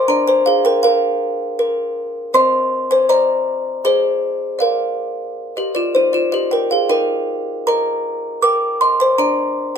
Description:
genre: classical, lullaby for music box.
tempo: 79 BPM.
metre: 3/4.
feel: straight.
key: unclear.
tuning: A4 = 439 Hz.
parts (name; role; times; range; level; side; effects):
music box; solo; 0.0-9.8 s; C4 to D6; -15 LUFS; equal; none.
room: moderate studio reverb, RT60 0.8 s.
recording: band playing live in one room.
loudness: -15 LUFS.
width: side -7 dB against mid.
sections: 0.0-9.8 A section.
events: none.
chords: 0.1 Bb/D; 2.3 Cm; 3.8 Ab; 4.6 Bb; 6.9 Eb; 9.2 Bb/D.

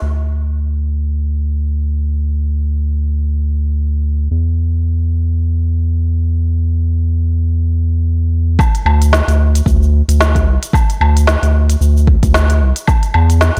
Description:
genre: organic downtempo.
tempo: 112 BPM.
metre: 4/4.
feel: swing 58% on 16ths.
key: unclear.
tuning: A4 = 440 Hz.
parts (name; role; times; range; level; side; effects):
round analog bass; bass; 0.0-13.6 s; C2 to E2; -15 LUFS; equal; none.
electronic kick drum; drums; 8.6-13.0 s; none; -16 LUFS; equal; overdrive.
organic electronic drum kit; drums; 8.6-13.6 s; hi-hat, shaker, snare drum, woodblock; -20 LUFS; equal; overdrive.
room: little or no reverb.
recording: blown-out, overdriven recording, overdrive.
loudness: -15 LUFS.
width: mono.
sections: 0.0-8.6 A section; 8.6-13.6 B section.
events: none.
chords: none.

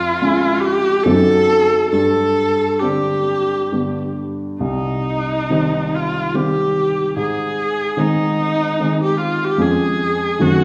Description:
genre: classical, romantic duo for viola and grand piano.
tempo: 65-76 BPM.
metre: 3/4.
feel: rubato.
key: C minor.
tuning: A4 = 439 Hz.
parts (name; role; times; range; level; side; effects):
rich viola; melody; 0.0-10.6 s; Eb4 to A4; -20 LUFS; equal; none.
dark baby grand piano; accompaniment; 0.0-10.6 s; C2 to F4; -21 LUFS; equal; none.
room: wet recital hall reverb, RT60 1.5 s.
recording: heard from further back in the room.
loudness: -18 LUFS.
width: mono.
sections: 0.0-10.6 A section.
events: none.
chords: 0.0 Db/F; 1.1 F#dim7; 1.9 Gsus4; 3.7 G; 4.6 Cm; 7.2 Ab; 9.6 Db/F.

